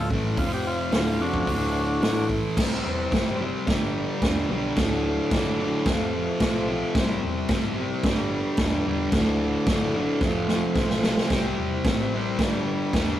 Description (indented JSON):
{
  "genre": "garage rock duo or trio",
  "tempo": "110 BPM",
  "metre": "4/4",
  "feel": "straight",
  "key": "unclear",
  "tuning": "A4 = 436 Hz",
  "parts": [
    { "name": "overdriven combo organ", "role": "melody", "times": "0.0-2.3 s", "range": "D4 to A4", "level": "-28 LUFS", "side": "equal", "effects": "none" },
    { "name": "combo organ", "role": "sustained chords", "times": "0.0-13.2 s", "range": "F#3 to D5", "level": "-32 LUFS", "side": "right 1 dB", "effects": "spring reverb" },
    { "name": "fuzz guitar", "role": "riff", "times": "0.0-13.2 s", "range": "D2 to C4", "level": "-26 LUFS", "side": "left 1 dB", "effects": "distortion" },
    { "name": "hollow-body short-scale picked electric bass", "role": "bass", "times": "0.0-13.1 s", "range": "D1 to C2", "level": "-33 LUFS", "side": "equal", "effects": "tube saturation" },
    { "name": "vintage drum kit", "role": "drums", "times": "0.1-13.1 s", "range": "crash cymbal, hi-hat, kick drum, snare drum", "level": "-26 LUFS", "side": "equal", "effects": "none" }
  ],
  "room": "moderate studio reverb, RT60 0.5 s",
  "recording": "rough rehearsal-room recording, tube saturation",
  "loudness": "-22 LUFS",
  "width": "side -12 dB against mid",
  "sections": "0.0-2.6 A section; 2.6-13.2 B section",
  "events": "drum fill 10.2-11.3",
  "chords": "0.4 F5; 0.9 D; 2.0 A5; 2.6 C; 3.7 G; 4.8 D; 5.9 F; 7.0 C; 8.0 G; 9.1 D; 10.2 F; 11.3 C; 12.4 G",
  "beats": "| 0.40 0.95 1.49 2.04 | 2.59 3.13 3.68 4.23 | 4.77 5.32 5.87 6.41 | 6.96 7.50 8.05 8.59 | 9.14 9.68 10.23 10.77 | 11.32 11.86 12.40 12.95"
}